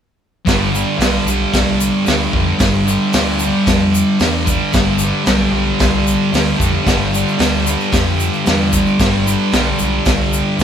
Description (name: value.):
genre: garage rock duo or trio.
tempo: 113 BPM.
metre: 4/4.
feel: straight.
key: G mixolydian.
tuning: A4 = 441 Hz.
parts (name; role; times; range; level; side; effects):
thick fuzz guitar; riff; 0.5-10.6 s; G2 to G3; -15 LUFS; equal; distortion.
overdriven picked electric bass; bass; 0.5-10.6 s; G1 to F2; -21 LUFS; equal; tube saturation.
raw garage drum kit; drums; 0.5-10.6 s; hi-hat, kick drum, snare drum; -18 LUFS; equal; none.
tube shaker; percussion; 0.5-10.6 s; none; -27 LUFS; left 4 dB; none.
room: light reverb.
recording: band playing live in one room.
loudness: -13 LUFS.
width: side -8 dB against mid.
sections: 0.5-10.6 A section.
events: none.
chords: 0.5 G5.